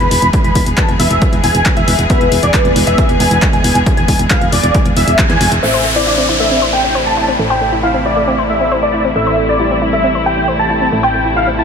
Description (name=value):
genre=uplifting trance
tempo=136 BPM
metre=4/4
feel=straight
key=A minor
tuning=A4 = 440 Hz
part: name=dense compressed supersaw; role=melody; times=0.0-11.6 s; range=D5 to B5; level=-16 LUFS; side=equal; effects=ensemble chorus, sidechain pumping, low-pass filter, analog delay
part: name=clear symphonic string section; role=sustained chords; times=0.0-11.6 s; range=C3 to G#4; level=-19 LUFS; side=left 1 dB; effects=sidechain pumping, low-pass filter
part: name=solid FM bass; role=bass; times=0.0-11.6 s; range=E1 to E2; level=-18 LUFS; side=equal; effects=sidechain pumping
part: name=punchy analog drum machine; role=drums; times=0.0-5.7 s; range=crash cymbal, handclaps, hi-hat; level=-20 LUFS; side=left 1 dB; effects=overdrive, low-pass filter on hats, low-pass filter on snare, low-pass filter on cymbals
part: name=electronic kick drum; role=drums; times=0.3-5.3 s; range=none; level=-14 LUFS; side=equal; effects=overdrive
part: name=warm velvety synth lead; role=second line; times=2.1-10.2 s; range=G4 to D5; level=-22 LUFS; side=left 1 dB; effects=chorus, tremolo, analog delay
part: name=bright concert grand piano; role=second line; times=5.6-11.6 s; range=D5 to A5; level=-24 LUFS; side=equal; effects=none
part: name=analog pluck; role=arpeggios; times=5.6-11.6 s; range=A3 to C5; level=-19 LUFS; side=left 2 dB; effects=chorus, sidechain pumping, analog delay
part: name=downlifter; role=sound effects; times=5.6-9.2 s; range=none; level=-20 LUFS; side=equal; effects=none
room=moderate huge ambient reverb, RT60 8.1 s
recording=dreamy mix soaked in reverb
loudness=-10 LUFS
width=side -6 dB against mid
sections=0.0-5.6 A section; 5.6-11.6 B section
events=band accent 5.2; filter sweep on supersaw synth 5.6-11.6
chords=0.0 E; 5.6 Am